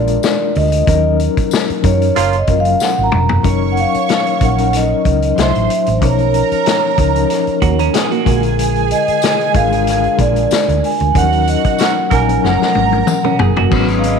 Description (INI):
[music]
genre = lush 1970s-style soul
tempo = 94 BPM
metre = 4/4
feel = swing 54% on 16ths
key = F# major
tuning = A4 = 440 Hz
[part]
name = vibraphone with soft mallets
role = melody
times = 0.0-14.2 s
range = C5 to A#5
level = -18 LUFS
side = right 2 dB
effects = none
[part]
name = mellow reed electric piano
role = accompaniment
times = 0.0-14.2 s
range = D3 to C5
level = -18 LUFS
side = left 9 dB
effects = fast tremolo
[part]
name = hollow-body short-scale fingered electric bass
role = bass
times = 0.0-14.2 s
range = E#1 to F#2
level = -17 LUFS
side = right 2 dB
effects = none
[part]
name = vintage drum kit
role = drums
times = 0.1-14.2 s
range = crash cymbal, hi-hat, kick drum, snare drum, toms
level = -19 LUFS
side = left 3 dB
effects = none
[part]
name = tambourine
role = percussion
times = 0.2-3.0, 9.2-13.2 s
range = none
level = -31 LUFS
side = left 10 dB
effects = none
[part]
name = warm horn section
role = stabs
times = 2.2-2.4, 11.8-14.2 s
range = A#3 to A#4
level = -21 LUFS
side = right 11 dB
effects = none
[part]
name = warm studio string section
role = second line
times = 3.4-14.2 s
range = F#3 to C#6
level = -21 LUFS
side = right 11 dB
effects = none
[part]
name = clean electric guitar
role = riff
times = 7.6-8.4, 13.2-13.9 s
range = A#3 to A#4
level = -19 LUFS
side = right 13 dB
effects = harmonic tremolo
[sound]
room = moderate echo chamber reverb, RT60 1.7 s, small room ambience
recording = 1960s-style stereo with parts hard left and right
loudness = -12 LUFS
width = side -6 dB against mid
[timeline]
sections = 0.0-3.4 A section; 3.4-13.7 B section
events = vibraphone solo 0.0-3.4; band accent 0.9-3.4, 11.1-13.7; drum fill 2.8-3.4, 12.4-13.7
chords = 0.0 A#7; 0.9 D#m7; 2.2 F#maj7; 3.4 F#6; 5.4 Cadd9; 6.0 Bmaj9#11; 8.3 A#7; 11.1 D#m7; 12.4 F#maj7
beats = 0.23 | 0.88 1.52 2.16 2.80 | 3.45 4.09 4.73 5.37 | 6.01 6.66 7.30 7.94 | 8.58 9.22 9.87 10.51 | 11.15 11.79 12.43 13.07 | 13.71